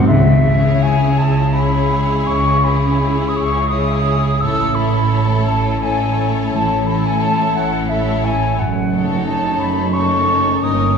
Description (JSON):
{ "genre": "classical, slow romantic movement for symphony orchestra", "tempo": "51-60 BPM (dotted quarters)", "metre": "12/8", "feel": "rubato", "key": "C# minor", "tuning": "A4 = 440 Hz", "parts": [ { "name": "silver concert flute", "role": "second line", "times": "0.0-11.0 s", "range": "E5 to E6", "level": "-19 LUFS", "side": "left 1 dB", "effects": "none" }, { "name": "warm studio viola section", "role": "accompaniment", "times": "0.0-11.0 s", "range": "D#4 to E4", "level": "-28 LUFS", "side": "right 1 dB", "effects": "none" }, { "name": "warm studio cello section", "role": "bass", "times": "0.0-11.0 s", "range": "F#2 to C#3", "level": "-21 LUFS", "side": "right 1 dB", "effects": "none" }, { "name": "dark French horn section", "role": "sustained chords", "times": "0.1-11.0 s", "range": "G#3 to C#4", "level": "-23 LUFS", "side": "left 3 dB", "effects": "none" }, { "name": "concert harp", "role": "arpeggios", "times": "0.1-11.0 s", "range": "F#2 to C#5", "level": "-23 LUFS", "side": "left 2 dB", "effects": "none" }, { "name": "rich studio double bass section", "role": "bass", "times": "0.1-11.0 s", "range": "F#1 to C#2", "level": "-22 LUFS", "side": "right 4 dB", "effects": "none" }, { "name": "rich studio violin section", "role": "melody", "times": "0.5-11.0 s", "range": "C#5", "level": "-29 LUFS", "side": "left 6 dB", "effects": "none" }, { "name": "rich studio violin section", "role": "second line", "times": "0.5-11.0 s", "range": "G#4 to A#4", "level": "-26 LUFS", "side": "left 4 dB", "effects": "none" } ], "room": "wet concert hall reverb, RT60 1.9 s", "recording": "heard from further back in the room", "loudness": "-14 LUFS", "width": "side -6 dB against mid", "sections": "0.1-11.0 A section", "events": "none", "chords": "0.1 C#m; 4.4 A; 8.6 D#m7b5/F#" }